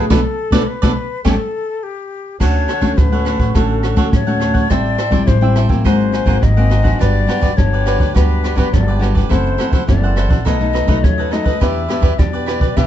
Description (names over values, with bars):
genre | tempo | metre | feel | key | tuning
samba and choro | 104 BPM | 4/4 | straight | D major | A4 = 441 Hz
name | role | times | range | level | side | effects
breathy jazz flute | second line | 0.0-12.9 s | G4 to E5 | -22 LUFS | left 6 dB | none
cavaquinho | accompaniment | 0.0-12.9 s | D4 to G5 | -22 LUFS | right 4 dB | none
nylon-string guitar | accompaniment | 0.0-12.9 s | F#2 to G4 | -19 LUFS | left 2 dB | none
upright bass | bass | 0.1-12.9 s | F#1 to E2 | -17 LUFS | equal | none
jazz brush drum kit | drums | 0.1-12.9 s | crash cymbal, hi-hat, kick drum, rim click, snare drum | -18 LUFS | right 1 dB | none
room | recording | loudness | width
light reverb | dark, warm production, nothing above 8.0 kHz | -13 LUFS | side -11 dB against mid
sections
0.0-2.4 A section; 2.4-12.9 B section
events
band accent 0.1-2.4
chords
0.1 Bm7; 1.3 A7; 2.4 Dmaj7; 4.7 Am7; 5.9 G#9; 7.0 Gmaj7; 9.3 F#m7b5; 10.5 B7; 11.6 Em7